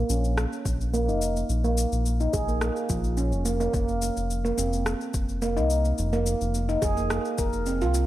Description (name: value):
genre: organic downtempo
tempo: 107 BPM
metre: 4/4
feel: swing 53% on 16ths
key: Bb minor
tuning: A4 = 440 Hz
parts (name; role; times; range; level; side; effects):
- handpan; arpeggios; 0.0-8.1 s; F3 to Bb4; -27 LUFS; right 2 dB; low-pass filter, digital delay
- round analog bass; bass; 0.0-8.1 s; F1 to C2; -26 LUFS; equal; sidechain pumping
- electronic cabasa and rim click; drums; 0.1-8.1 s; none; -34 LUFS; left 2 dB; overdrive
- electronic kick drum; drums; 0.7-7.5 s; none; -29 LUFS; equal; overdrive
room: light reverb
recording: none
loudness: -23 LUFS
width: side -14 dB against mid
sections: 0.0-8.1 A section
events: filter sweep on handpan 0.0-8.1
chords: 0.0 Bbm; 3.7 F5